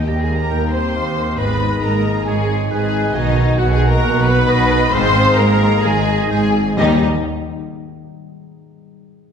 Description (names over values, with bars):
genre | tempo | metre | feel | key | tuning
cinematic, heroic adventure film score | 134 BPM | 4/4 | uneven beats | unclear | A4 = 440 Hz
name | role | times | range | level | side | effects
warm symphonic violin section | melody | 0.0-7.0 s | D#5 to C6 | -26 LUFS | left 2 dB | none
bright oboe | second line | 0.0-6.4 s | Cb5 to Bb5 | -26 LUFS | right 1 dB | none
hollow small flute group | second line | 0.0-7.0 s | D#5 to C6 | -26 LUFS | left 1 dB | none
rich symphonic violin section | second line | 0.0-7.0 s | D#4 to C5 | -23 LUFS | left 2 dB | none
warm symphonic viola section | accompaniment | 0.0-7.0 s | G3 to C5 | -24 LUFS | right 2 dB | none
bright trombone section | sustained chords | 0.0-7.0 s | D#3 to Eb4 | -29 LUFS | right 1 dB | none
warm French horn section | sustained chords | 0.0-7.0 s | D#3 to Eb4 | -26 LUFS | left 3 dB | none
concert harp | arpeggios | 0.0-8.7 s | Ab2 to Eb6 | -26 LUFS | left 4 dB | none
dark trumpet section | stabs | 0.0-7.0 s | F#4 to Ab4 | -27 LUFS | left 1 dB | none
rich symphonic double bass section | bass | 0.0-7.0 s | Ab1 to Eb2 | -20 LUFS | right 2 dB | none
timpani | percussion | 0.0-0.3, 6.8-7.0 s | Eb3 | -25 LUFS | left 1 dB | none
rich symphonic cello section | bass | 0.1-7.0 s | Eb2 to Eb3 | -21 LUFS | right 2 dB | none
room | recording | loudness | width
wet scoring stage reverb, RT60 1.5 s | heard from further back in the room | -14 LUFS | side -7 dB against mid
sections
0.0-6.8 A section; 6.8-8.7 B section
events
slowing down 2.3-6.8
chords
0.0 Eb; 1.4 Abm; 3.1 B; 4.9 Ab; 6.8 Eb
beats
0.07 0.52 0.95 | 1.39 1.83 2.27 2.70 | 3.14 3.58 4.03 4.47 | 4.92 5.38 5.84 6.30 | 6.78 7.25 7.71 8.18